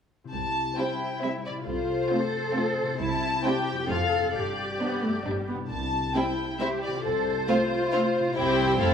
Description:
cinematic, playful, whimsical film cue; 135 BPM; 3/4; straight; C major; A4 = 440 Hz
concert harp; arpeggios; 0.2-8.9 s; F2 to C5; -33 LUFS; left 6 dB
warm studio violin section; melody; 0.3-8.9 s; C5 to A5; -30 LUFS; left 3 dB
warm chamber double bass section; bass; 0.3-8.9 s; F1 to C2; -34 LUFS; right 3 dB
warm chamber violin section; second line; 0.8-8.9 s; D4 to D5; -31 LUFS; left 1 dB
dark chamber viola section; accompaniment; 0.8-8.9 s; G3 to C4; -30 LUFS; right 1 dB
dark chamber cello section; bass; 0.8-8.9 s; E4 to A4; -30 LUFS; right 1 dB
moderate scoring stage reverb, RT60 1.4 s; small room ambience; -24 LUFS; side -7 dB against mid
0.3-8.9 A section
0.3 C; 1.7 F/C; 3.0 C; 3.9 F; 4.3 Gsus4; 5.2 G; 5.7 C
| 0.33 0.78 1.23 | 1.67 2.12 2.56 | 3.00 3.45 3.89 | 4.34 4.80 5.25 | 5.70 6.15 6.59 | 7.04 7.48 7.93 | 8.37 8.81

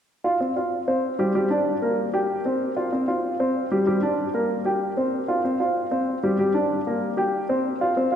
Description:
jazz; 190 BPM; 4/4; straight; A4 = 440 Hz
warm baby grand piano; accompaniment; 0.2-8.2 s; G3 to G5; -21 LUFS; equal
wet church reverb, RT60 3.7 s; recorded in a church or concert hall; -21 LUFS; side -8 dB against mid
0.1-8.2 A section
0.1 G7sus4; 1.3 Gm; 2.6 G7sus4; 3.9 Gm; 5.1 G7sus4; 6.4 Gm; 7.6 G7sus4 (rootless)
| 0.08 0.40 0.71 1.03 | 1.35 1.66 1.98 2.29 | 2.61 2.92 3.24 3.55 | 3.87 4.18 4.50 4.81 | 5.13 5.45 5.76 6.08 | 6.39 6.71 7.02 7.33 | 7.65 7.96

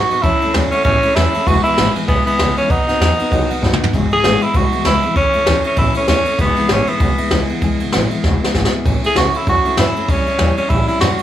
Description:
rockabilly; 195 BPM; 4/4; swing 58% on 8ths; E major; A4 = 440 Hz
raspy tenor saxophone; melody; 0.0-11.2 s; B3 to G#4; -16 LUFS; right 1 dB
picked steel-string acoustic guitar; accompaniment; 0.0-11.2 s; E2 to F#4; -21 LUFS; left 4 dB
warm upright piano; accompaniment; 0.0-3.9 s; B4 to B5; -26 LUFS; right 4 dB
upright bass; bass; 0.0-11.2 s; E1 to G#2; -20 LUFS; equal
jazz brush drum kit; drums; 0.1-11.2 s; kick drum, ride cymbal, snare drum, toms; -18 LUFS; right 1 dB
light reverb; studio ambience; -13 LUFS; side -11 dB against mid
0.0-3.9 A section; 3.9-11.2 A section
upright piano fill 3.5-3.9; drum fill 3.6-3.9, 8.2-8.9
0.2 A; 1.5 E; 2.7 B; 3.9 E; 5.2 A; 6.4 E; 8.9 A; 10.1 A#dim7
| 0.24 0.55 0.86 1.16 | 1.47 1.78 2.09 2.40 | 2.70 3.01 3.32 3.62 | 3.93 4.24 4.55 4.86 | 5.16 5.47 5.78 6.08 | 6.39 6.70 7.01 7.32 | 7.62 7.93 8.24 8.55 | 8.85 9.16 9.47 9.78 | 10.09 10.39 10.70 11.01

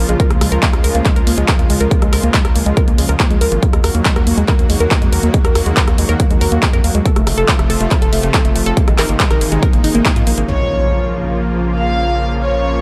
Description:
uplifting trance; 140 BPM; 4/4; straight; Bb minor; A4 = 439 Hz
supersaw pad; sustained chords; 0.0-12.8 s; C3 to Gb4; -24 LUFS; equal; sidechain pumping
analog pluck; arpeggios; 0.0-10.4 s; Ab3 to Bb4; -22 LUFS; equal; chorus, phaser, sidechain pumping, delay
gritty driven synth bass; bass; 0.0-12.8 s; F1 to Ab2; -20 LUFS; equal; sidechain pumping
punchy analog drum machine; drums; 0.1-10.6 s; crash cymbal, handclaps, hi-hat, rim click; -22 LUFS; equal; low-pass filter on hats, low-pass filter on snare, low-pass filter on cymbals
electronic kick drum; drums; 0.2-10.1 s; -16 LUFS; equal; overdrive
warm studio violin section; second line; 10.5-12.8 s; Db5 to F5; -22 LUFS; equal; delay
impact; sound effects; 10.5-12.2 s; -26 LUFS; equal
digital ambience; -14 LUFS; mono
0.0-10.5 A section; 10.5-12.8 B section
impact 10.5-12.2
0.2 Db; 3.6 Ebm; 7.1 F; 8.8 Ab; 10.5 Bbm
| 0.20 0.63 1.06 1.48 | 1.91 2.34 2.77 3.20 | 3.63 4.06 4.48 4.91 | 5.34 5.77 6.20 6.63 | 7.06 7.48 7.91 8.34 | 8.77 9.20 9.63 10.06 | 10.48 10.91 11.34 11.77 | 12.20 12.63

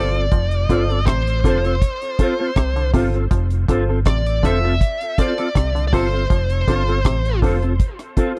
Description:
roots reggae; 80 BPM; 4/4; straight; F major; A4 = 440 Hz
high-gain lead guitar; melody; 0.0-7.4 s; C5 to E5; -27 LUFS; equal; distortion, dub echo
electric guitar with an envelope filter; accompaniment; 0.0-8.4 s; C4 to A4; -28 LUFS; equal; ensemble chorus, dub echo
muted clav; arpeggios; 0.0-7.6 s; C3 to F3; -31 LUFS; equal; overdrive
dark upright piano; stabs; 0.0-8.4 s; F4 to C5; -27 LUFS; equal
deep dub fingered electric bass; bass; 0.0-7.8 s; F1 to C2; -22 LUFS; equal
deep reggae drum kit; drums; 0.1-8.4 s; hi-hat, kick drum, rim click; -21 LUFS; equal
little or no reverb; dry, close 1970s-style studio recording; -19 LUFS; mono
0.0-8.4 A section
0.0 F
| 0.32 1.06 1.81 2.56 | 3.31 4.06 4.80 5.55 | 6.30 7.05 7.80

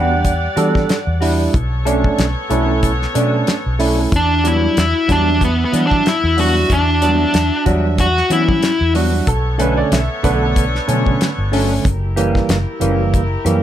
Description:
straight-eighth soul blues; 93 BPM; 4/4; swing 56% on 16ths; B minor; A4 = 437 Hz
clear upright piano; second line; 0.0-0.9, 9.0-11.8 s; D4 to E5; -25 LUFS; right 4 dB; plate reverb
bright tine electric piano; accompaniment; 0.0-13.6 s; D3 to F#5; -20 LUFS; right 4 dB; plate reverb
rich chamber string section; sustained chords; 0.0-13.6 s; G3 to F#5; -26 LUFS; left 1 dB; plate reverb
mellow electric guitar; stabs; 0.0-13.6 s; E3 to A4; -24 LUFS; left 4 dB; phaser, slapback echo, plate reverb
vintage muted fingered electric bass; bass; 0.0-13.6 s; F#1 to E3; -18 LUFS; equal
damped 70s drum kit; drums; 0.2-13.6 s; hi-hat, kick drum, snare drum; -20 LUFS; left 1 dB
dark smooth lead guitar; melody; 4.2-8.9 s; B3 to F#4; -16 LUFS; left 1 dB; overdrive, slapback echo, plate reverb
light reverb; -13 LUFS; side -11 dB against mid
0.0-13.6 A section
0.0 Em9; 1.5 Bm9; 4.1 Em9; 9.3 Bm9; 11.8 F#7b9
0.25 0.89 | 1.54 2.18 2.83 3.47 | 4.12 4.76 5.41 6.05 | 6.70 7.34 7.99 8.63 | 9.27 9.92 10.56 11.21 | 11.85 12.49 13.14

